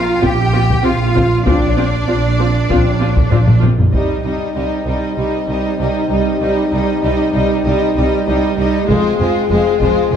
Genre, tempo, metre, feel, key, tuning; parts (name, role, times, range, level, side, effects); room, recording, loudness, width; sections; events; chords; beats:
cinematic, epic orchestral film score; 97 BPM; 4/4; straight; C minor; A4 = 440 Hz
warm symphonic violin section; melody; 0.0-10.2 s; C5 to G5; -27 LUFS; left 6 dB
warm symphonic violin section; second line; 0.0-10.2 s; Eb4 to G5; -24 LUFS; left 3 dB
bright symphonic cello section; bass; 0.0-10.2 s; C2 to G4; -22 LUFS; right 1 dB
clear symphonic double bass section; bass; 0.0-10.2 s; F1 to C2; -18 LUFS; right 2 dB
rich symphonic viola section; accompaniment; 0.2-10.2 s; G3 to F4; -19 LUFS; right 2 dB
mellow French horn section; sustained chords; 0.2-10.2 s; C4 to Ab4; -20 LUFS; left 3 dB
taiko ensemble; drums; 0.2-5.1, 8.9-10.1 s; -17 LUFS; left 1 dB
moderate scoring stage reverb, RT60 1.5 s; -12 LUFS; side -8 dB against mid
0.0-3.9 A section; 3.9-10.2 B section
drum fill 3.3-3.9
0.0 Bbadd9; 3.9 Cm; 8.9 Fm
0.22 0.84 | 1.46 2.08 2.70 3.32 | 3.94 4.55 5.17 5.79 | 6.41 7.03 7.65 8.27 | 8.88 9.50 10.12